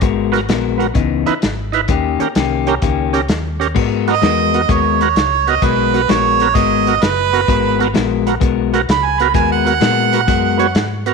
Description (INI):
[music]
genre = electric blues shuffle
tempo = 129 BPM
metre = 4/4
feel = swing 68% on 8ths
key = G# minor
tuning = A4 = 440 Hz
[part]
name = electric guitar through a small old amp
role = riff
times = 0.0-10.6 s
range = C#3 to A#4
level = -18 LUFS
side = left 14 dB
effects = none
[part]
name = vintage muted fingered electric bass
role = bass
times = 0.0-11.1 s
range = F#1 to A#2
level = -22 LUFS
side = left 1 dB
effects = none
[part]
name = warm soul drum kit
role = drums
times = 0.0-11.1 s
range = crash cymbal, hi-hat, kick drum, snare drum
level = -19 LUFS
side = left 1 dB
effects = none
[part]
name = overdriven tonewheel organ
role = accompaniment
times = 0.3-11.1 s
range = B3 to C#5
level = -21 LUFS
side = right 10 dB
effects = slow rotary speaker
[part]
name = warm harmonica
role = second line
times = 4.1-10.9 s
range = B4 to B5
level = -15 LUFS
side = right 10 dB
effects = overdrive
[sound]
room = moderate echo chamber reverb, RT60 1.5 s, small room ambience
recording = 1960s-style stereo with parts hard left and right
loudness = -13 LUFS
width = side -4 dB against mid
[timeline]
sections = 0.0-3.8 A section; 3.8-11.1 B section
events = harmonica solo 3.8-11.1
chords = 0.0 G#m9; 1.0 C#m9; 1.9 D#7; 3.8 G#m9